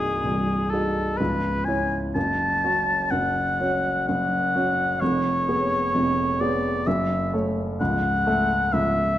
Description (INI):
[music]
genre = classical, romantic duo for oboe and grand piano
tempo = 64 BPM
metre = 3/4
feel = rubato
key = unclear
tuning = A4 = 438 Hz
[part]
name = warm oboe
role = melody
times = 0.0-9.2 s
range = G#4 to A5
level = -24 LUFS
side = left 1 dB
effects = none
[part]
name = warm grand piano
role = accompaniment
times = 0.0-9.2 s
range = B#0 to E5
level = -24 LUFS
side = equal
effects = none
[sound]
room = wet recital hall reverb, RT60 1.7 s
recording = dark, warm production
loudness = -21 LUFS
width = side -12 dB against mid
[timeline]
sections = 0.0-9.2 A section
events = none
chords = 0.0 G#7/B#; 1.2 C#m; 2.2 F#m; 5.0 C#7/E#; 6.9 F#m7; 7.8 A/C#